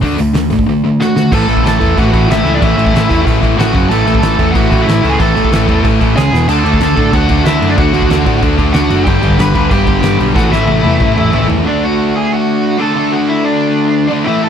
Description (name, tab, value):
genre	punk rock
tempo	185 BPM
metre	4/4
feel	straight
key	unclear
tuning	A4 = 440 Hz
part	crunchy overdriven guitar	riff	0.0-14.5 s	E2 to D4	-16 LUFS	left 11 dB	none
part	sludgy distorted guitar	riff	0.0-14.5 s	E2 to D4	-16 LUFS	right 10 dB	overdrive
part	overdriven picked electric bass	bass	0.0-11.6 s	E1 to A2	-16 LUFS	equal	none
part	loose indie drum kit	drums	0.0-11.6 s	crash cymbal, hi-hat, kick drum, snare drum, splash cymbal, toms	-16 LUFS	equal	none
part	high-gain lead guitar	melody	1.0-14.5 s	D4 to B5	-16 LUFS	right 1 dB	distortion
room	little or no reverb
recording	none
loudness	-9 LUFS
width	side -8 dB against mid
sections	0.0-1.3 A section; 1.3-11.7 B section; 11.7-14.5 C section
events	drum fill 1.0-1.3, 6.3, 10.4-11.7; half time 11.7-14.5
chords	0.0 D; 1.3 A5; 3.8 F#5; 3.9 A5; 6.2 C#5; 6.3 E5; 6.5 D; 9.1 G; 10.4 A5; 11.7 D